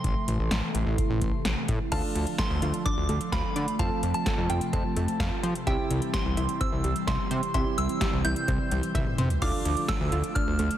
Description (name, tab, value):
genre	synth-pop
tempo	128 BPM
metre	4/4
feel	straight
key	unclear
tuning	A4 = 440 Hz
part	soft synth bell	melody	0.0-10.8 s	G5 to G6	-33 LUFS	right 1 dB	chorus, phaser, shimmer reverb
part	phased analog pad	sustained chords	0.0-10.8 s	C3 to A3	-33 LUFS	equal	phaser, chorus, shimmer reverb
part	fat analog bass	bass	0.0-10.7 s	A1 to F3	-28 LUFS	equal	none
part	electro analog drum machine	drums	0.0-10.8 s	crash cymbal, hi-hat, kick drum, snare drum, toms	-29 LUFS	equal	none
part	warm concert grand piano	accompaniment	1.9-10.8 s	C4 to A4	-35 LUFS	right 5 dB	shimmer reverb
part	analog pluck	arpeggios	1.9-10.8 s	G3 to F5	-36 LUFS	left 1 dB	chorus, digital delay, shimmer reverb
room	light reverb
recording	dense, heavily limited modern master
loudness	-24 LUFS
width	side -11 dB against mid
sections	0.0-1.9 A section; 1.9-10.8 B section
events	drum fill 8.9-9.4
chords	0.0 Am; 1.9 Dm; 3.8 F; 5.7 C; 9.4 Dm